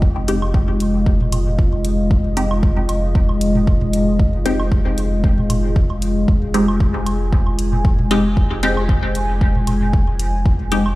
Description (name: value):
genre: dub techno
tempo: 115 BPM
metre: 4/4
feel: swing 55% on 16ths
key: F minor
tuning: A4 = 439 Hz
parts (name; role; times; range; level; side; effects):
- dark analog pad; sustained chords; 0.0-11.0 s; Ab3 to Ab5; -21 LUFS; left 1 dB; chorus, sidechain pumping
- soft dub sub bass; bass; 0.0-11.0 s; F1; -21 LUFS; equal; sidechain pumping
- electronic kick drum; drums; 0.0-10.6 s; none; -16 LUFS; equal; studio reverb
- filtered dub chord stab; stabs; 0.3-10.8 s; Ab3 to G4; -23 LUFS; left 1 dB; phaser, dub echo
- electronic hi-hat; drums; 0.3-10.8 s; none; -29 LUFS; left 1 dB; studio reverb
- electronic woodblock and toms; percussion; 0.4-11.0 s; none; -28 LUFS; right 2 dB; sidechain pumping on perc, studio reverb, sidechain pumping on toms, dub echo
room: little or no reverb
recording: played on a big sound system in a bare room, large studio reverb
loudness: -15 LUFS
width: side -18 dB against mid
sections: 0.0-11.0 A section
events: none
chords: 0.0 Fm7